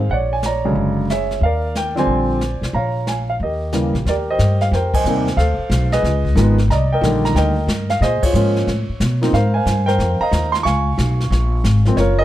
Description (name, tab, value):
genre	jazz piano trio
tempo	182 BPM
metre	4/4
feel	swing 64% on 8ths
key	unclear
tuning	A4 = 440 Hz
part	warm grand piano	melody	0.0-12.2 s	C3 to Db6	-18 LUFS	right 1 dB	none
part	upright bass	bass	0.0-12.2 s	F#1 to B2	-18 LUFS	equal	none
part	jazz brush drum kit	drums	0.1-12.2 s	brushed snare drum, crash cymbal, hi-hat, kick drum, snare drum	-26 LUFS	left 1 dB	none
room	light reverb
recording	dark, warm production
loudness	-15 LUFS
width	side -13 dB against mid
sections	0.0-4.1 A section; 4.1-12.2 B section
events	band accent 4.9, 8.2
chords	0.1 Bb7alt; 1.4 Ebmaj13; 2.7 Bbm; 3.4 Eb7b9; 4.1 Abmaj9; 5.4 Dm7; 6.0 Db9; 6.7 Cm9; 8.0 Bbm9; 8.7 Aadd9; 9.3 Ab69; 10.7 Db6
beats	| 0.10 0.43 0.76 1.09 | 1.42 1.75 2.08 2.41 | 2.74 3.07 3.40 3.73 | 4.06 4.39 4.72 5.05 | 5.38 5.71 6.04 6.37 | 6.70 7.03 7.36 7.69 | 8.02 8.35 8.67 9.00 | 9.33 9.66 9.99 10.32 | 10.65 10.98 11.31 11.64 | 11.97